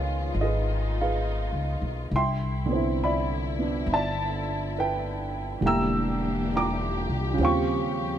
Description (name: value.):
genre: jazz ballad.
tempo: 68 BPM.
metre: 4/4.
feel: swing 68% on 8ths.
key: C major.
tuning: A4 = 440 Hz.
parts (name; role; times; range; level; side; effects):
warm upright piano; accompaniment; 0.0-8.2 s; Db3 to E6; -27 LUFS; right 2 dB; none.
muted studio string section; sustained chords; 0.0-8.2 s; D3 to G4; -34 LUFS; left 3 dB; none.
upright bass; bass; 0.0-8.2 s; E1 to Eb2; -29 LUFS; left 1 dB; none.
room: light reverb.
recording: none.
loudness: -24 LUFS.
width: side -10 dB against mid.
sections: 0.0-8.2 A section.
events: none.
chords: 0.0 Db9; 2.1 Cmaj9; 5.6 Em7b5; 7.4 Eb13.